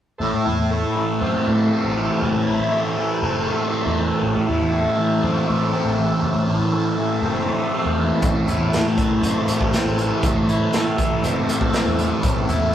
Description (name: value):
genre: psychedelic rock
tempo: 120 BPM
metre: 4/4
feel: straight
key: A minor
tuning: A4 = 438 Hz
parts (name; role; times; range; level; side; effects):
- combo organ; sustained chords; 0.2-12.7 s; A4 to A5; -32 LUFS; equal; none
- fuzz guitar; riff; 0.2-12.7 s; A2 to E4; -19 LUFS; equal; distortion, phaser
- vintage muted picked electric bass; bass; 0.2-12.7 s; F#1 to A2; -26 LUFS; equal; none
- raw garage drum kit; drums; 8.2-12.6 s; hi-hat, kick drum, snare drum; -23 LUFS; equal; none
room: moderate studio reverb, RT60 0.5 s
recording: rough rehearsal-room recording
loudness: -18 LUFS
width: side -10 dB against mid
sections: 0.2-12.7 A section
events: none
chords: 0.2 Am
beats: | 0.21 0.71 1.22 1.72 | 2.22 2.72 3.22 3.72 | 4.22 4.72 5.23 5.73 | 6.23 6.73 7.23 7.73 | 8.23 8.73 9.23 9.73 | 10.23 10.73 11.23 11.73 | 12.23 12.73